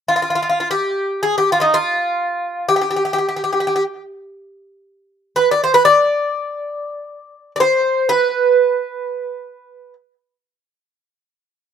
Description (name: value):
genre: greek folk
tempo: free time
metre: none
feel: none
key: G phrygian dominant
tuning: A4 = 439 Hz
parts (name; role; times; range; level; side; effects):
- Greek bouzouki; melody; 0.1-9.9 s; Eb4 to D5; -15 LUFS; equal; none
room: little or no reverb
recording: recorded outdoors, with no room sound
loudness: -15 LUFS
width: side -8 dB against mid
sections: 0.0-11.7 A section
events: none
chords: none